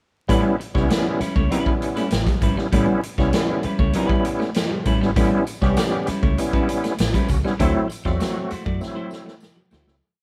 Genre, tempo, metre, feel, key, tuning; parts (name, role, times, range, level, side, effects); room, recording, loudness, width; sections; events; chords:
funk; 98 BPM; 4/4; straight; A mixolydian; A4 = 441 Hz
clean electric guitar; accompaniment; 0.3-9.9 s; G3 to D5; -28 LUFS; equal
clean electric guitar; riff; 0.3-10.0 s; F#3 to D4; -32 LUFS; equal
bright tonewheel organ; stabs; 0.3-10.0 s; F#3 to G4; -26 LUFS; equal; overdrive, chorus vibrato, fast rotary speaker
vintage muted fingered electric bass; bass; 0.3-10.0 s; G#1 to F#2; -27 LUFS; equal
swinging big-band drum kit; drums; 0.3-10.0 s; hi-hat, kick drum, snare drum; -25 LUFS; equal
tambourine; percussion; 5.2-9.9 s; -47 LUFS; equal
light reverb; band playing live in one room, vinyl crackle; -21 LUFS; mono
0.3-10.0 groove
fade-out 7.6-10.0; drum fill 8.8-10.0
0.3 A9; 7.6 D9